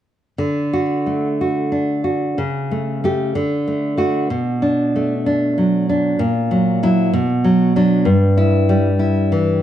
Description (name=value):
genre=romantic piece for solo classical guitar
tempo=63 BPM (dotted quarters)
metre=6/8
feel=rubato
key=D major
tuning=A4 = 435 Hz
part: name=nylon-string guitar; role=solo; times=0.4-9.6 s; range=G2 to G4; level=-15 LUFS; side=equal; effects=none
room=light reverb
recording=dark, warm production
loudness=-15 LUFS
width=side -11 dB against mid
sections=0.4-9.6 A section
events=none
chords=0.4 D; 2.4 A7/C#; 3.4 D; 4.3 Bm7; 6.2 F#7/A#; 7.1 Bm; 8.1 Em/G